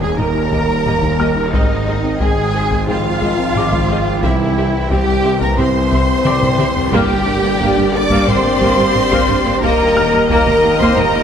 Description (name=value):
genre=cinematic, hybrid orchestral and electronic film score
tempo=89 BPM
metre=4/4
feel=straight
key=G phrygian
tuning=A4 = 440 Hz
part: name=warm studio violin section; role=second line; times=0.0-11.2 s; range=Eb5 to D6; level=-22 LUFS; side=left 2 dB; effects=none
part: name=dark French horn section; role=sustained chords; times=0.0-11.2 s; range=Eb3 to D4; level=-21 LUFS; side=left 4 dB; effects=none
part: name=glassy FM pad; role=sustained chords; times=0.0-11.2 s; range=Eb3 to C5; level=-27 LUFS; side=right 1 dB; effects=none
part: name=warm trombone section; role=sustained chords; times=0.0-11.2 s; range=D3 to C4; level=-26 LUFS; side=right 2 dB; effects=none
part: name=thumb-piano-like synth pluck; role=arpeggios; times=0.0-11.2 s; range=C3 to Ab4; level=-25 LUFS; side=left 5 dB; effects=chorus, digital delay
part: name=rich chamber double bass section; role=bass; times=0.0-11.2 s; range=Ab1 to G2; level=-22 LUFS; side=right 3 dB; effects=none
part: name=rich symphonic cello section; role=bass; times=0.0-11.2 s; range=Eb4 to D5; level=-19 LUFS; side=right 2 dB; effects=none
part: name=snarling distorted saw bass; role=bass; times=0.0-11.2 s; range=Eb1 to C2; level=-26 LUFS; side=equal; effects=distortion
part: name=taiko ensemble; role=drums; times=0.0-11.2 s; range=none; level=-22 LUFS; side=equal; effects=none
part: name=warm symphonic violin section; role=melody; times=0.2-11.2 s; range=D5 to E5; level=-26 LUFS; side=left 4 dB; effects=none
part: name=rich symphonic viola section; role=accompaniment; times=0.2-11.2 s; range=Bb3 to Ab4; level=-22 LUFS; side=equal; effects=none
part: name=clear grand piano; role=texture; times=1.2-11.2 s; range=D5 to F6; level=-27 LUFS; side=left 2 dB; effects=digital delay
room=wet concert hall reverb, RT60 2.0 s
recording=none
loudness=-12 LUFS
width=side -8 dB against mid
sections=0.0-11.2 A section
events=drum fill 6.3-6.9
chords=0.0 Eb; 1.5 Ab; 4.2 C; 6.9 Gm; 9.6 Eb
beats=0.19 0.86 | 1.53 2.21 2.88 3.56 | 4.23 4.91 5.58 6.25 | 6.93 7.60 8.28 8.95 | 9.62 10.30 10.97